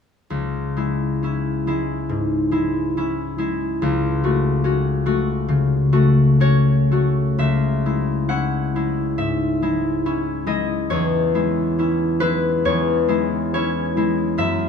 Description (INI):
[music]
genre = classical, solo harp piece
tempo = 68 BPM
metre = 4/4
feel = uneven beats, rubato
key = C# minor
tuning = A4 = 440 Hz
[part]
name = concert harp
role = solo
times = 0.3-14.7 s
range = C#2 to F#5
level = -18 LUFS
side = left 2 dB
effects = none
[sound]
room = wet stone room reverb, RT60 1.4 s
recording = none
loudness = -18 LUFS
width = side -7 dB against mid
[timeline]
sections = 0.3-7.4 A section; 7.4-14.7 B section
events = none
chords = 0.3 C#m; 3.8 F#m/C#; 7.4 C#m; 10.9 C#m/E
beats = | 0.30 1.22 2.09 2.96 | 3.80 4.64 5.49 6.42 | 7.39 8.30 9.19 10.05 | 10.92 11.80 12.67 13.54 | 14.38